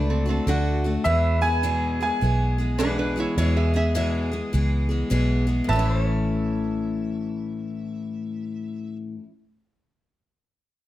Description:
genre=honky-tonk and classic country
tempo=104 BPM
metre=4/4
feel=swing 64% on 8ths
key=A major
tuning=A4 = 440 Hz
part: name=bright upright piano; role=melody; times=0.0-9.0 s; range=D5 to A5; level=-27 LUFS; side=right 1 dB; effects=plate reverb
part: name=lap resonator guitar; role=second line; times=0.0-9.0 s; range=C4 to E5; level=-28 LUFS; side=right 3 dB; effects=none
part: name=picked steel-string acoustic guitar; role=accompaniment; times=0.0-9.3 s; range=E2 to G#4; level=-26 LUFS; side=left 3 dB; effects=none
part: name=pedal steel guitar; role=sustained chords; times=0.0-8.8 s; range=B4 to F#5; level=-35 LUFS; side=equal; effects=none
part: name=vintage muted fingered electric bass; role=bass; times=0.0-9.0 s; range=A1 to E2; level=-23 LUFS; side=equal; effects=none
room=light reverb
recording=close, detailed microphones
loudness=-21 LUFS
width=side -14 dB against mid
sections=0.0-5.7 A section; 5.7-8.0 B section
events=none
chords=0.0 D; 1.1 E; 5.7 A

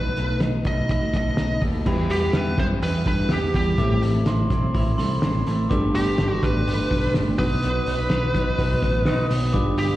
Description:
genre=jangly indie pop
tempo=125 BPM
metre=4/4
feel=straight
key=E minor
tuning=A4 = 444 Hz
part: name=fuzz lead guitar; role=melody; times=0.0-10.0 s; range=G4 to D#5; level=-26 LUFS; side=right 1 dB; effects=distortion, slapback echo, tape echo
part: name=mellow electric guitar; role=accompaniment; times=0.0-10.0 s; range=G2 to B4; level=-30 LUFS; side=right 4 dB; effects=ensemble chorus, slapback echo
part: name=twelve-string electric guitar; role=arpeggios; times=0.0-10.0 s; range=E2 to A4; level=-31 LUFS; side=left 4 dB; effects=slapback echo, tape echo
part: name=modern bright picked electric bass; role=bass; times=0.0-10.0 s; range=G1 to G2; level=-24 LUFS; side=equal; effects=none
part: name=cloth-damped thuddy drum kit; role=drums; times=0.2-9.9 s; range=crash cymbal, hi-hat, kick drum, snare drum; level=-25 LUFS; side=equal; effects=none
part: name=glockenspiel with soft plastic mallets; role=second line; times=1.9-10.0 s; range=B5 to D#6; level=-32 LUFS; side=equal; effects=slapback echo
part: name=soft electric-piano-like synth keys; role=accompaniment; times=1.9-10.0 s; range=G3 to B4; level=-30 LUFS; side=left 1 dB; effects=chorus, tremolo, slapback echo
room=little or no reverb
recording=live gig heard through the venue's PA, recital hall reverb, lossy compression artefacts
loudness=-19 LUFS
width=side -15 dB against mid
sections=0.0-1.9 A section; 1.9-10.0 B section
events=none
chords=0.0 B7; 1.9 Em; 3.8 Am; 5.7 Gadd9; 7.4 B

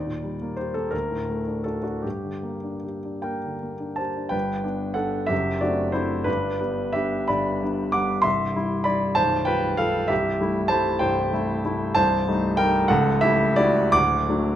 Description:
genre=classical, romantic character piece for solo piano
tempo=48-66 BPM (dotted quarters)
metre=6/8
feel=rubato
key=G minor, G major from 4.3 s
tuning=A4 = 438 Hz
part: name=warm grand piano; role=solo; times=0.0-14.6 s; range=B0 to D6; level=-21 LUFS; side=equal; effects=none
room=moderate recital hall reverb, RT60 1.7 s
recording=none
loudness=-21 LUFS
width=side -11 dB against mid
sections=0.0-4.3 A section; 4.3-14.6 B section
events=none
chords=0.0 Eb; 0.9 D; 2.0 Gm; 4.3 G; 5.3 D7/F#; 6.3 G; 8.2 C; 9.2 G7/B; 10.1 C6; 12.0 Am7b5/C; 12.9 A7/C#; 13.9 D

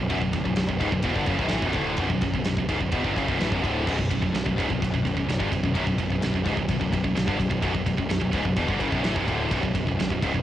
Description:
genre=heavy metal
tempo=128 BPM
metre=4/4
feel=straight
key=B minor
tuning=A4 = 439 Hz
part: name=distorted electric guitar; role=riff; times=0.0-10.4 s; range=B1 to E3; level=-29 LUFS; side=left 6 dB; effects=overdrive, cassette tape
part: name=distorted electric guitar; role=riff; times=0.0-10.4 s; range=B1 to E3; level=-33 LUFS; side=equal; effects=none
part: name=heavy high-gain guitar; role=riff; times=0.0-10.4 s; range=B1 to E3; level=-28 LUFS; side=right 5 dB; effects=distortion, cassette tape
part: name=fuzz picked electric bass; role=bass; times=0.0-10.4 s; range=B0 to A1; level=-30 LUFS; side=equal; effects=overdrive
part: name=big rock drum kit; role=drums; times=0.1-10.4 s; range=crash cymbal, kick drum, ride cymbal, snare drum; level=-28 LUFS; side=equal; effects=cassette tape
room=studio reverb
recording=home recording on cassette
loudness=-22 LUFS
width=side -12 dB against mid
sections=0.0-10.4 A section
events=none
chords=0.0 Bm

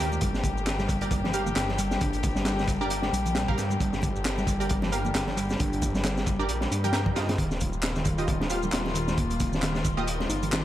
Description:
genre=breakbeat, breaks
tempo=134 BPM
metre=4/4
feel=swing 57% on 16ths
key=G minor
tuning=A4 = 440 Hz
part: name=dark chamber string section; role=sustained chords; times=0.0-10.6 s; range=D3 to G4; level=-33 LUFS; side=left 4 dB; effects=sidechain pumping
part: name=picked electric bass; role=riff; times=0.0-10.6 s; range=D3 to Eb4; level=-32 LUFS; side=right 1 dB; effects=vintage 12-bit sampler grit, tape echo
part: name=orchestra-hit-like synth stab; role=stabs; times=0.0-10.1 s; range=F4 to G5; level=-33 LUFS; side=right 2 dB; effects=built-in reverb, tape echo
part: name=phased detuned saw bass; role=bass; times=0.0-10.6 s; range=Eb1 to G2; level=-31 LUFS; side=equal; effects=phaser, tube saturation
part: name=crunchy breakbeat drum kit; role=drums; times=0.0-10.6 s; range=hi-hat, kick drum, snare drum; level=-29 LUFS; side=equal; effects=none
part: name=electronic shaker and handclaps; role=drums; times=0.0-10.6 s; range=none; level=-36 LUFS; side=equal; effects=tape echo
part: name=congas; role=percussion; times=0.1-10.6 s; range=none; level=-39 LUFS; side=right 3 dB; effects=none
room=light reverb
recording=echo-heavy mix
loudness=-24 LUFS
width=side -13 dB against mid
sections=0.0-10.6 A section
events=none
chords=0.2 Gm; 7.4 Ebadd9

